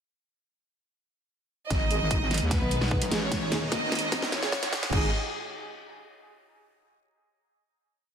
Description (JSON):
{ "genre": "heavy wobble dubstep", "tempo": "149 BPM", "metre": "4/4", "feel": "half-time", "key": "G# phrygian", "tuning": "A4 = 441 Hz", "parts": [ { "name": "warm studio violin section", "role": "melody", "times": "1.7-5.1 s", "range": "B3 to D#5", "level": "-32 LUFS", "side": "right 1 dB", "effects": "dub echo" }, { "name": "supersaw chords", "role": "sustained chords", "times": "1.7-5.1 s", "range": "G#2 to D#5", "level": "-36 LUFS", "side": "equal", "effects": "vintage 12-bit sampler grit, sidechain pumping" }, { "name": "wobble bass", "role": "bass", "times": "1.7-5.1 s", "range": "G#1 to D#2", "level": "-31 LUFS", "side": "equal", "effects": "chorus, overdrive" }, { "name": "dubstep drum kit", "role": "drums", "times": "1.7-5.0 s", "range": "crash cymbal, hi-hat, snare drum", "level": "-31 LUFS", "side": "equal", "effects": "none" }, { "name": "electronic kick drum", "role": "drums", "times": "1.7-5.0 s", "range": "none", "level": "-30 LUFS", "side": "equal", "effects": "none" }, { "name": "riser", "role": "sound effects", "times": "3.6-4.9 s", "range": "none", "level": "-38 LUFS", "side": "equal", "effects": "none" }, { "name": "mellow brass ensemble", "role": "stabs", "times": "1.9-5.1 s", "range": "G#3 to G#4", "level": "-38 LUFS", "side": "right 4 dB", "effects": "dub echo" }, { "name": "pulsing pluck wobble bass", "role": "bass", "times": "2.6-4.9 s", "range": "D#1 to B1", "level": "-30 LUFS", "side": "equal", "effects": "chorus, overdrive" } ], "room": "light reverb, digital ambience", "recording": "dense, heavily limited modern master, high-pass filter", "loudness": "-25 LUFS", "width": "side -8 dB against mid", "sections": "1.7-4.9 build; 4.9-6.5 final chord", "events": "build-up 1.7-4.9; drum fill 1.7-4.9; filter sweep 1.7-4.9; riser 3.6-4.9", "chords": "1.7 G#5" }